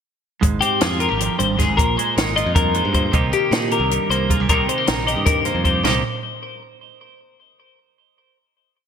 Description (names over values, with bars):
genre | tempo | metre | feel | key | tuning
math rock and midwest emo | 311 BPM (eighths) | 7/8 | straight | C minor | A4 = 440 Hz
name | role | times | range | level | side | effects
twelve-string electric guitar | accompaniment | 0.4-6.0 s | F2 to G4 | -23 LUFS | right 7 dB | wide subtle chorus
modern bright picked electric bass | bass | 0.4-6.0 s | Ab1 to Bb2 | -24 LUFS | equal | none
compact cocktail drum kit | drums | 0.4-5.9 s | crash cymbal, hi-hat, kick drum, snare drum, toms | -21 LUFS | equal | none
twelve-string electric guitar | arpeggios | 0.6-6.0 s | G4 to Eb5 | -20 LUFS | left 5 dB | ping-pong delay
room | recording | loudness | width
moderate lush hall reverb, RT60 1.8 s | bright 1980s-style digital production | -16 LUFS | side -7 dB against mid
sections
0.4-5.8 A section; 5.8-7.2 final chord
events
none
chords
0.4 Ab6; 1.8 Bb7sus4; 3.1 Cm7